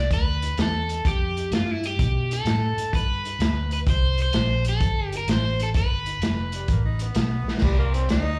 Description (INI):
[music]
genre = electric blues shuffle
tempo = 128 BPM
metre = 4/4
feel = swing 67% on 8ths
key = unclear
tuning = A4 = 440 Hz
[part]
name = crunchy overdriven guitar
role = melody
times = 0.0-7.1 s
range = E4 to D5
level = -30 LUFS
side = equal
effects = slapback echo
[part]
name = vintage muted fingered electric bass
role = bass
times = 0.0-8.4 s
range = F1 to B2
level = -27 LUFS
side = equal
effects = none
[part]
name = vintage drum kit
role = drums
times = 0.1-8.2 s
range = crash cymbal, hi-hat, kick drum, snare drum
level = -28 LUFS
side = equal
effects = none
[part]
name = growling tenor saxophone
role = second line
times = 6.6-8.4 s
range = G3 to Eb4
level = -33 LUFS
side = equal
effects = slapback echo
[sound]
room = studio ambience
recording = live gig heard through the venue's PA, club reverb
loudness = -24 LUFS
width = mono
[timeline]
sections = 0.0-7.6 A section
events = drum fill 7.4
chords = 0.1 G7; 3.9 C5; 5.7 G7; 7.6 C7(no3)